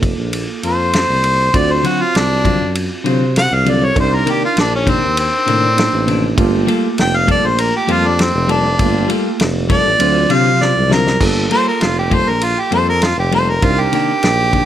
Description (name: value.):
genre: straight-eighth soul blues.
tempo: 99 BPM.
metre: 4/4.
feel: straight.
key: G minor.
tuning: A4 = 438 Hz.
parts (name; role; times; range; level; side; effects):
bell-like tine electric piano; accompaniment; 0.0-14.7 s; F#3 to Bb4; -22 LUFS; right 8 dB; none.
mellow tuba; bass; 0.0-14.6 s; F1 to C3; -18 LUFS; equal; none.
warm soul drum kit; drums; 0.0-14.7 s; crash cymbal, kick drum, ride cymbal, snare drum; -20 LUFS; equal; none.
mellow horn section; sustained chords; 0.6-14.2 s; F#3 to D5; -28 LUFS; left 2 dB; none.
warm harmonica; melody; 0.7-14.7 s; C4 to G5; -16 LUFS; equal; overdrive, slapback echo.
clean electric guitar; stabs; 1.8-14.7 s; C3 to A4; -22 LUFS; left 4 dB; none.
room: little or no reverb.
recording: none.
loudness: -12 LUFS.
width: side -11 dB against mid.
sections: 0.0-11.2 A section; 11.2-14.7 A section.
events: harmonica solo 0.0-14.7; drum fill 10.6-11.2.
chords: 0.0 Gm9 (rootless); 1.5 D7#9; 4.0 Cm9; 6.4 Gm9; 10.0 D7#9; 11.2 Gm9; 13.6 Cm9.